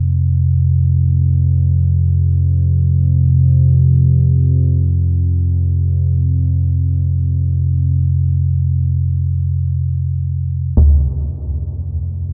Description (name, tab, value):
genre	dark ambient drone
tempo	free time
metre	none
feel	none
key	unclear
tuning	A4 = 444 Hz
part	deep rumbling drone	drone	0.0-12.3 s	F2 to C3	-15 LUFS	equal	built-in reverb
part	taiko ensemble	percussion	10.8-11.0 s	none	-18 LUFS	equal	low-pass filter on perc
room	wet cathedral reverb, RT60 6.7 s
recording	dreamy mix soaked in reverb, nothing above 7.5 kHz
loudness	-15 LUFS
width	mono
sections	0.0-10.8 A section; 10.8-12.3 B section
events	none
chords	0.0 F5